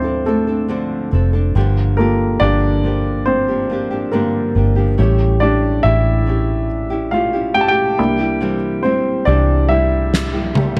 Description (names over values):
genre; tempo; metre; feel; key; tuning
pop ballad; 70 BPM; 4/4; straight; unclear; A4 = 440 Hz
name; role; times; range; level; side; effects
dark grand piano; accompaniment; 0.0-10.8 s; F3 to A5; -20 LUFS; equal; none
nylon-string guitar; arpeggios; 0.0-10.8 s; G2 to A4; -25 LUFS; equal; none
vintage muted fingered electric bass; bass; 0.0-10.8 s; F1 to D2; -20 LUFS; equal; none
huge arena drum kit; drums; 10.1-10.8 s; snare drum, toms; -19 LUFS; equal; none
room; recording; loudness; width
little or no reverb; none; -16 LUFS; mono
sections
0.0-10.8 A section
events
grand piano solo 0.0-10.8; drum fill 10.1-10.8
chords
0.0 Dm7; 1.6 Gm7; 5.0 A7; 8.0 C7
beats
0.70 | 1.55 2.41 3.27 4.13 | 4.98 5.84 6.70 7.55 | 8.41 9.27 10.13